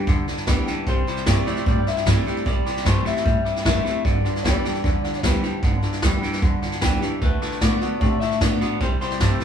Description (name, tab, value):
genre	rockabilly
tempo	151 BPM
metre	4/4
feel	straight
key	G major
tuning	A4 = 440 Hz
part	picked steel-string acoustic guitar	accompaniment	0.0-9.4 s	G2 to G4	-27 LUFS	left 4 dB	none
part	twangy electric guitar	riff	0.0-9.4 s	G2 to B3	-27 LUFS	right 3 dB	phaser
part	upright bass	bass	0.1-9.4 s	F#1 to C3	-25 LUFS	equal	none
part	vintage brush drum kit	drums	0.1-9.4 s	hi-hat, kick drum, snare drum	-23 LUFS	right 1 dB	none
part	electric guitar through a small old amp	melody	0.9-9.4 s	B4 to E5	-27 LUFS	left 3 dB	none
room	light reverb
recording	band playing live in one room, small room ambience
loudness	-19 LUFS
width	side -8 dB against mid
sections	0.0-9.4 A section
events	none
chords	0.0 G; 0.9 C; 4.0 G; 7.2 D; 8.8 C